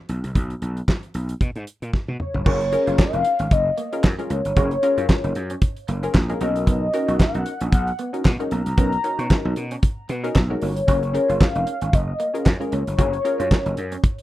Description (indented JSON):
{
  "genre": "early-eighties boogie funk",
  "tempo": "114 BPM",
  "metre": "4/4",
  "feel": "swing 56% on 16ths",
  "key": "F# major",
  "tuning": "A4 = 439 Hz",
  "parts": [
    { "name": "gritty slap bass", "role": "bass", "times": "0.1-14.0 s", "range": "E#1 to B2", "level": "-25 LUFS", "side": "equal", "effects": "overdrive" },
    { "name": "damped 70s drum kit", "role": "drums", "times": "0.1-14.2 s", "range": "crash cymbal, handclaps, hi-hat, kick drum, snare drum, toms", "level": "-18 LUFS", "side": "equal", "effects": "none" },
    { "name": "warm velvety synth lead", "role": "melody", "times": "2.2-14.2 s", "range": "C#5 to A#5", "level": "-24 LUFS", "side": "left 2 dB", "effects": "chorus" },
    { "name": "funky polysynth comp", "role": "accompaniment", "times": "2.5-13.9 s", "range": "C#4 to A#4", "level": "-27 LUFS", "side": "left 1 dB", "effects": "chorus" },
    { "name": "clean electric guitar", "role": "riff", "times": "2.5-14.0 s", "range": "G#3 to F#4", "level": "-34 LUFS", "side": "right 4 dB", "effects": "analog chorus" }
  ],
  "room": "moderate small room reverb, RT60 0.5 s",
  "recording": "rough home demo mix",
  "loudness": "-19 LUFS",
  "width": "side -15 dB against mid",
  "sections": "0.0-2.5 A section; 2.5-14.2 B section",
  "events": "drum fill 1.9-2.5",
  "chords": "0.0 N.C.; 2.5 F#maj7; 6.4 Bmaj7; 10.9 F#maj7",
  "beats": "| 0.35 0.88 1.41 1.93 | 2.46 2.99 3.51 4.04 | 4.57 5.09 5.62 6.14 | 6.67 7.20 7.72 8.25 | 8.78 9.30 9.83 10.36 | 10.88 11.41 11.93 12.46 | 12.99 13.51 14.04"
}